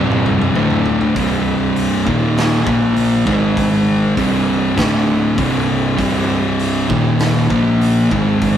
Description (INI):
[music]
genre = stoner and doom metal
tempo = 99 BPM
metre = 4/4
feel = straight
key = C minor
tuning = A4 = 439 Hz
[part]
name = fuzz guitar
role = riff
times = 0.0-8.6 s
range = C2 to Bb3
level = -19 LUFS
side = right 6 dB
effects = distortion
[part]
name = thick fuzz guitar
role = riff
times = 0.0-8.6 s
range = C2 to Bb3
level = -16 LUFS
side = left 3 dB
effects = distortion
[part]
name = fuzz picked electric bass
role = bass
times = 0.0-8.6 s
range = C1 to Bb1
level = -24 LUFS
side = equal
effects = overdrive
[part]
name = raw garage drum kit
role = drums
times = 0.1-8.6 s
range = hi-hat, kick drum, snare drum, toms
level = -22 LUFS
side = equal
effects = none
[sound]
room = light reverb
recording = rough rehearsal-room recording, warm saturation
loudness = -13 LUFS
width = side -10 dB against mid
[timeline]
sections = 0.0-1.2 A section; 1.2-8.6 B section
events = drum fill 0.0-1.2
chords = 0.0 C5; 0.6 D5; 1.2 C5; 2.1 Eb5; 2.7 Bb5; 3.3 Ab5; 4.2 C5; 4.8 D5; 5.4 C5; 6.9 Eb5; 7.5 Bb5